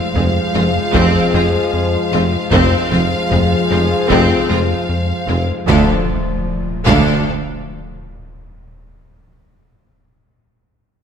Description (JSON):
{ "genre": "cinematic, hybrid orchestral and electronic film score", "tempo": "76 BPM", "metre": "4/4", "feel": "straight", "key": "D minor", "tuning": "A4 = 439 Hz", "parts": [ { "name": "clear symphonic violin section", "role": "melody", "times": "0.0-7.3 s", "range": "F5", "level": "-23 LUFS", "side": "left 1 dB", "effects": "none" }, { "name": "warbly tape-like pad", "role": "sustained chords", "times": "0.0-6.1 s", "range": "F3 to C5", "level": "-22 LUFS", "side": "left 2 dB", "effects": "chorus, built-in reverb" }, { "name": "warm French horn section", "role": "sustained chords", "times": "0.0-6.0 s", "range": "F3 to A4", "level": "-22 LUFS", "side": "left 3 dB", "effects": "none" }, { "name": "clear chamber violin section", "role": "second line", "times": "0.2-7.3 s", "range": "C4 to A4", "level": "-23 LUFS", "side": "left 4 dB", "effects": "none" }, { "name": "rich symphonic viola section", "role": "accompaniment", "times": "0.2-7.3 s", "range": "C4 to D4", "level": "-23 LUFS", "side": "right 1 dB", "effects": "none" }, { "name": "resonant blip pluck", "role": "arpeggios", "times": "0.2-5.5 s", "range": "F3 to F4", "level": "-26 LUFS", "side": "left 4 dB", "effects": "none" }, { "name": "rubbery square bass", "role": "riff", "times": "0.2-5.5 s", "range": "F2", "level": "-20 LUFS", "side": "left 2 dB", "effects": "none" }, { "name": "clear symphonic cello section", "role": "bass", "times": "0.2-7.3 s", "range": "D2 to F2", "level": "-21 LUFS", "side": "right 2 dB", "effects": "none" }, { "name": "mellow tuba", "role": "bass", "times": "0.2-7.2 s", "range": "F1 to D2", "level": "-22 LUFS", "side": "right 3 dB", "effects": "none" }, { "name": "rich symphonic double bass section", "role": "bass", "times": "0.2-7.3 s", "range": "F1 to D2", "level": "-22 LUFS", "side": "right 3 dB", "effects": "none" }, { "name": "taiko ensemble", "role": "drums", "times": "0.2-8.4 s", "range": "none", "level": "-24 LUFS", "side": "equal", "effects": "none" }, { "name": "impact", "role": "sound effects", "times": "5.7-8.8 s", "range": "none", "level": "-26 LUFS", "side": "equal", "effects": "none" } ], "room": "wet scoring stage reverb, RT60 1.6 s", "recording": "none", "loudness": "-13 LUFS", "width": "side -7 dB against mid", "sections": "0.0-5.7 A section; 5.7-8.8 B section", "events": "impact 5.7-8.8", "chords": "0.0 Fm; 5.7 Dm", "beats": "0.15 0.94 1.73 | 2.52 3.31 4.10 4.89 | 5.68 6.47 7.26 8.05" }